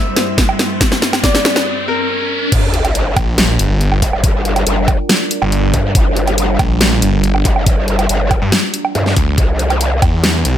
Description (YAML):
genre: heavy wobble dubstep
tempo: 140 BPM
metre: 4/4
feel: half-time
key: G dorian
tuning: A4 = 436 Hz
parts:
  - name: clear grand piano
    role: melody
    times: 0.0-2.4 s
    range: Bb4 to E5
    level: -22 LUFS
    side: left 1 dB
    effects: low-pass filter, ping-pong delay
  - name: evolving wavetable pad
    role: sustained chords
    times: 0.0-10.6 s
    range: G2 to E5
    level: -23 LUFS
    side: right 2 dB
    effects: phaser, built-in reverb, sidechain pumping
  - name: riser and sub drop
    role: sound effects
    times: 0.0-4.2 s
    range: none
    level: -21 LUFS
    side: left 1 dB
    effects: none
  - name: dubstep drum kit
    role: drums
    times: 0.2-10.5 s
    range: crash cymbal, hi-hat, snare drum, woodblock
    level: -16 LUFS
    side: equal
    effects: none
  - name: electronic kick drum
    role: drums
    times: 0.4-10.1 s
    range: none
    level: -15 LUFS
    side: equal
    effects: none
  - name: growl bass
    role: bass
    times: 2.5-10.0 s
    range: G1 to G2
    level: -15 LUFS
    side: equal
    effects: chorus, overdrive
  - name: snarling distorted saw bass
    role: bass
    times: 3.2-10.6 s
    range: G1 to G2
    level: -15 LUFS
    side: equal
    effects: distortion, overdrive
room: light reverb, digital ambience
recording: none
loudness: -12 LUFS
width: side -11 dB against mid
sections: 0.0-2.5 A section; 2.5-10.6 B section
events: build-up 0.0-2.5; drum fill 0.0-1.7; riser 0.0-2.5; filter sweep on ambient pad 0.0-2.5; break 1.7-2.5; drop 2.5-10.6; impact 2.5-4.2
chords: 0.0 C/G; 2.5 Gm7; 9.4 C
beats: 0.38 | 0.81 1.24 1.67 2.09 | 2.52 2.95 3.38 3.81 | 4.24 4.67 5.09 5.52 | 5.95 6.38 6.81 7.24 | 7.67 8.09 8.52 8.95 | 9.38 9.81 10.24